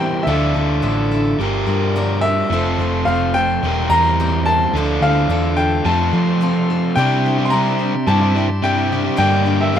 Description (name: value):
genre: folk rock and heartland rock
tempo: 108 BPM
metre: 4/4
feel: straight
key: unclear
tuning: A4 = 439 Hz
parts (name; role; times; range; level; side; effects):
- clear grand piano; melody; 0.0-9.8 s; E5 to C6; -20 LUFS; left 1 dB; none
- picked steel-string acoustic guitar; accompaniment; 0.0-9.8 s; G2 to C5; -25 LUFS; left 4 dB; none
- bright tonewheel organ; sustained chords; 0.0-9.8 s; F4 to D6; -30 LUFS; right 2 dB; wide subtle chorus
- crunchy overdriven guitar; riff; 0.0-9.8 s; E2 to Bb4; -20 LUFS; right 1 dB; none
- hollow-body short-scale picked electric bass; bass; 0.0-9.8 s; E1 to F3; -20 LUFS; equal; none
room: small room ambience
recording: rough home demo mix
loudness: -15 LUFS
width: side -9 dB against mid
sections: 0.0-7.0 A section; 7.0-9.8 B section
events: none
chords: 0.3 Dmadd9; 1.4 Gm7; 2.5 F; 3.6 C7/E; 4.7 Dmadd9; 5.9 F; 7.0 Cadd9; 9.2 Gm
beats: | 0.29 0.85 1.40 1.96 | 2.52 3.07 3.63 4.19 | 4.74 5.30 5.86 6.42 | 6.97 7.53 8.09 8.64 | 9.20 9.76